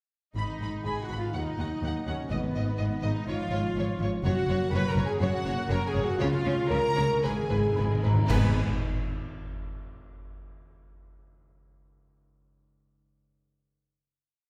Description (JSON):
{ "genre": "cinematic, heroic adventure film score", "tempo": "112-125 BPM", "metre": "4/4", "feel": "straight", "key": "G# dorian", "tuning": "A4 = 442 Hz", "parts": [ { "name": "mellow French horn section", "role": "sustained chords", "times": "0.3-8.5 s", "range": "B3 to B4", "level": "-35 LUFS", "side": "equal", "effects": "none" }, { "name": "clear symphonic cello section", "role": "bass", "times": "0.3-8.6 s", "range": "D#2 to C#3", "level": "-34 LUFS", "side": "equal", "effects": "none" }, { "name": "warm symphonic violin section", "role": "melody", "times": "0.4-8.6 s", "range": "B4 to B5", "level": "-40 LUFS", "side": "equal", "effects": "none" }, { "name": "warm symphonic violin section", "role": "second line", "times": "0.4-8.6 s", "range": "B4 to B5", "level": "-40 LUFS", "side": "equal", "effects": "none" }, { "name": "clear symphonic viola section", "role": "accompaniment", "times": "0.4-8.6 s", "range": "B3 to B4", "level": "-38 LUFS", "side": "equal", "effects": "none" }, { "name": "concert harp", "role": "arpeggios", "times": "0.4-10.4 s", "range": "F#2 to C#6", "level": "-39 LUFS", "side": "equal", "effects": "none" }, { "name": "warm symphonic double bass section", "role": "bass", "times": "0.4-8.6 s", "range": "F#1 to D#2", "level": "-35 LUFS", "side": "equal", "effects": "none" }, { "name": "timpani", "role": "percussion", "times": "2.3-3.0, 7.2-8.5 s", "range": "G#2", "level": "-33 LUFS", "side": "equal", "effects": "none" }, { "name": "cymbal swell, clash cymbals and concert bass drum", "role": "percussion", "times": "4.2-9.3 s", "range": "none", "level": "-37 LUFS", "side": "equal", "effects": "none" }, { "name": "mellow hollow large flute ensemble", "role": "second line", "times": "7.8-8.3 s", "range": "A#5 to B5", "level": "-42 LUFS", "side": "equal", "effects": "none" } ], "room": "wet scoring stage reverb, RT60 1.5 s", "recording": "heard from further back in the room", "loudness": "-28 LUFS", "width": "mono", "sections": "0.4-8.3 theme; 8.3-10.4 final chord", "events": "slowing down 3.3-8.3; timpani fill 7.2-8.3; band accent 8.3-8.8", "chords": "0.4 G#m; 1.3 D#m; 2.3 G#m; 3.3 C#/G#; 4.2 F#; 6.2 C#; 7.2 G#m", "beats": "| 0.36 0.86 1.35 1.83 | 2.32 2.80 3.28 3.76 | 4.25 4.73 5.21 5.71 | 6.20 6.71 7.24 7.77 | 8.30 8.82 9.34 9.86" }